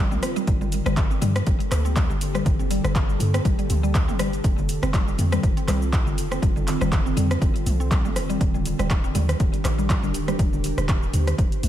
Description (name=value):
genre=afro house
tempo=121 BPM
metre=4/4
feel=swing 56% on 16ths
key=G minor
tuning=A4 = 439 Hz
part: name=ethereal airy pad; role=sustained chords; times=0.0-11.7 s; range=D3 to C5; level=-30 LUFS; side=right 1 dB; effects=ensemble chorus, built-in reverb, sidechain pumping
part: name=mallet-like synth pluck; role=arpeggios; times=0.0-10.4 s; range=G3 to C4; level=-30 LUFS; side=left 2 dB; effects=analog chorus, sidechain pumping, tape echo
part: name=warm 808-style bass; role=bass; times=0.0-11.7 s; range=Eb1 to G2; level=-25 LUFS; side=equal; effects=sidechain pumping
part: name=deep house drum kit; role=drums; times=0.1-11.7 s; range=handclaps, hi-hat, rim click, shaker, toms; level=-29 LUFS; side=equal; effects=overdrive, studio reverb
part: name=electronic kick drum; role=drums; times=0.5-11.5 s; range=none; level=-22 LUFS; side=equal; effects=overdrive, studio reverb
part: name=congas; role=percussion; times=0.5-11.2 s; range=none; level=-33 LUFS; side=right 1 dB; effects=none
room=light reverb, digital ambience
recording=echo-heavy mix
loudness=-20 LUFS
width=side -12 dB against mid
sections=0.0-11.7 A section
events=none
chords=0.5 Gmadd9; 4.4 F7; 8.4 Ebmaj7